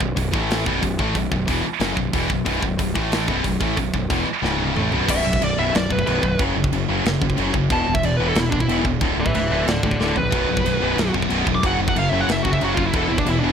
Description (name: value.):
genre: heavy metal.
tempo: 183 BPM.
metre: 4/4.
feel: straight.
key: B minor.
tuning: A4 = 439 Hz.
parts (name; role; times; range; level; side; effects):
distorted electric guitar; riff; 0.0-13.5 s; B1 to A3; -25 LUFS; left 11 dB; overdrive.
heavy high-gain guitar; riff; 0.0-5.1, 10.3-13.5 s; B1 to A3; -27 LUFS; equal; distortion.
scooped high-gain guitar; riff; 0.0-13.5 s; B1 to A3; -25 LUFS; right 12 dB; distortion.
fuzz picked electric bass; bass; 0.0-13.5 s; B0 to A#1; -26 LUFS; equal; overdrive.
tight metal drum kit; drums; 0.0-13.3 s; crash cymbal, hi-hat, kick drum, snare drum, toms; -25 LUFS; equal; none.
high-gain lead guitar; melody; 5.1-13.5 s; D4 to D6; -23 LUFS; equal; distortion.
room: studio reverb.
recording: none.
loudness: -18 LUFS.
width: side -7 dB against mid.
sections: 0.0-5.1 A section; 5.1-13.5 B section.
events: drum fill 4.4-5.1, 10.0-10.3; lead electric guitar solo 5.1-13.5.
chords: 0.3 A5; 0.7 B5; 3.0 A5; 3.3 B5; 4.4 C#5; 4.8 B5; 6.4 F#5; 7.7 E5; 9.0 D5; 10.3 B5; 11.6 F#5; 12.9 E5.